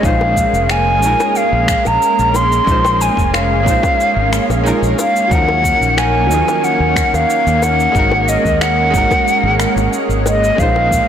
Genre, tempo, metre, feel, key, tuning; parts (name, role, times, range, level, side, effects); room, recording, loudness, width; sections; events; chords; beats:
sunset chillout; 91 BPM; 4/4; straight; Bb minor; A4 = 438 Hz
mellow hollow silver concert flute; melody; 0.0-11.1 s; Eb5 to C6; -14 LUFS; left 1 dB; tape echo, shimmer reverb
clear baby grand piano; accompaniment; 0.0-11.1 s; F3 to C5; -22 LUFS; moving between left 2 dB and right 8 dB; auto-pan, tape echo, shimmer reverb
lush unison pad; sustained chords; 0.0-11.1 s; Eb3 to Db4; -20 LUFS; right 2 dB; chorus, shimmer reverb
mellow fretless electric bass; bass; 0.0-11.0 s; F1 to Eb2; -18 LUFS; equal
electronic cabasa and finger snaps; drums; 0.0-11.1 s; -24 LUFS; left 1 dB; overdrive, studio reverb, soft clipping on snare
electronic kick drum; drums; 0.0-11.1 s; -18 LUFS; equal; studio reverb
bongos; percussion; 0.2-10.9 s; -27 LUFS; left 5 dB
moderate concert hall reverb, RT60 2.2 s; blown-out, overdriven recording, overdrive; -11 LUFS; side -9 dB against mid
0.0-11.1 A section
0.0 Bbm11; 5.3 Ebm7; 8.0 Ab9sus4
| 0.04 0.70 1.36 2.02 | 2.68 3.33 3.99 4.65 | 5.31 5.97 6.63 7.29 | 7.95 8.61 9.27 9.93 | 10.59